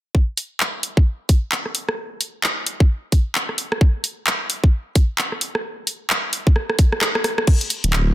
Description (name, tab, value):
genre	UK garage, two-step garage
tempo	131 BPM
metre	4/4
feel	swing 60% on 16ths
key	unclear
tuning	A4 = 441 Hz
part	electronic kick drum	drums	0.1-7.6 s	none	-14 LUFS	equal	none
part	garage drum kit	drums	0.4-8.0 s	crash cymbal, handclaps, hi-hat, rim click	-21 LUFS	equal	none
part	dark detuned saw bass	bass	7.8-8.1 s	D1	-17 LUFS	equal	none
room	light reverb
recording	dense, heavily limited modern master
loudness	-18 LUFS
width	side -15 dB against mid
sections	0.1-7.5 A section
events	drum fill 6.6-7.5; kick drops out 7.0-7.5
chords	none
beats	| 0.15 0.60 1.06 1.52 | 1.98 2.44 2.89 3.35 | 3.81 4.27 4.73 5.18 | 5.64 6.10 6.56 7.02 | 7.47 7.93